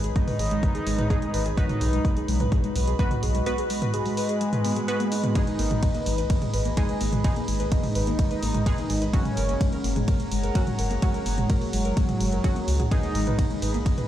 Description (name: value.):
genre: melodic techno.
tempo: 127 BPM.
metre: 4/4.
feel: straight.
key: G# minor.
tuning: A4 = 440 Hz.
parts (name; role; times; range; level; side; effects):
dark analog pad; sustained chords; 0.0-14.1 s; F#4 to B5; -34 LUFS; left 2 dB; chorus, phaser, sidechain pumping.
soft round pluck; arpeggios; 0.0-14.0 s; G#3 to B4; -31 LUFS; equal; wide subtle chorus, sidechain pumping, dub echo.
filtered dub chord stab; stabs; 0.0-14.1 s; F#3 to B4; -35 LUFS; right 3 dB; chorus, sidechain pumping, dub echo.
round analog bass; bass; 0.0-13.8 s; F#1 to C#2; -26 LUFS; equal; sidechain pumping.
punchy analog drum machine; drums; 0.0-14.1 s; hi-hat, ride cymbal, toms; -31 LUFS; right 1 dB; none.
fat analog lead; melody; 0.2-13.8 s; F#3 to D#4; -31 LUFS; right 1 dB; chorus, sidechain pumping, digital delay.
electronic kick drum; drums; 0.2-14.0 s; none; -24 LUFS; equal; overdrive.
room: little or no reverb.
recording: played on a big sound system in a bare room, large studio reverb.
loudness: -22 LUFS.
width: side -12 dB against mid.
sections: 0.0-14.1 A section.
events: none.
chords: 0.0 G#m; 1.6 B; 5.4 G#m; 9.1 F#add9; 12.9 G#m.